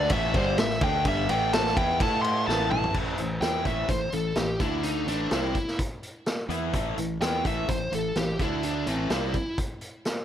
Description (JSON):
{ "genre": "blues rock power trio and southern rock", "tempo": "127 BPM", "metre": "4/4", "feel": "straight", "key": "unclear", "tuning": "A4 = 440 Hz", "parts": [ { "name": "biting lead guitar", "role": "melody", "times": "0.0-9.6 s", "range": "C4 to C6", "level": "-29 LUFS", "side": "equal", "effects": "overdrive" }, { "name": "crunchy overdriven guitar", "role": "riff", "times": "0.0-9.3 s", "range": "G2 to A4", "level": "-30 LUFS", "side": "equal", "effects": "none" }, { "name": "fuzz fingered electric bass", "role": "bass", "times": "0.0-9.3 s", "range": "G1 to A2", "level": "-32 LUFS", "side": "equal", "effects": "overdrive" }, { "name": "vintage drum kit", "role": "drums", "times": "0.1-10.2 s", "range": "crash cymbal, hi-hat, kick drum, ride cymbal, snare drum, toms", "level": "-29 LUFS", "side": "equal", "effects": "none" } ], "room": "light reverb", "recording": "none", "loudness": "-24 LUFS", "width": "side -10 dB against mid", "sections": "0.0-3.0 A section; 3.0-10.2 B section", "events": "lead electric guitar solo 0.0-3.0; drum fill 2.5-3.0", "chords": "0.1 A5; 4.6 D5; 5.1 A5; 8.4 D5; 8.9 A5" }